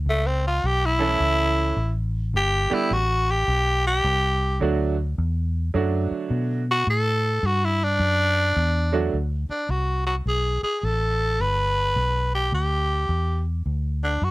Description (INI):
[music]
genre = electric blues shuffle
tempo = 106 BPM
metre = 4/4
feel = swing 65% on 8ths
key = D major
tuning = A4 = 440 Hz
[part]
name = vintage muted fingered electric bass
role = bass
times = 0.0-14.3 s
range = G1 to B2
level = -24 LUFS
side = equal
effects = none
[part]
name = growling tenor saxophone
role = melody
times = 0.1-14.3 s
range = A3 to B4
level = -22 LUFS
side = equal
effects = none
[part]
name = clear grand piano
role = accompaniment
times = 1.0-9.1 s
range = D3 to A4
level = -25 LUFS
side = right 6 dB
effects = none
[sound]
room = little or no reverb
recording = none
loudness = -20 LUFS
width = side -19 dB against mid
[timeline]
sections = 0.0-9.1 A section; 9.1-14.3 B section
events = tenor saxophone solo 0.0-9.1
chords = 0.1 A; 2.3 G; 4.6 D; 9.1 D5; 11.4 G; 13.7 D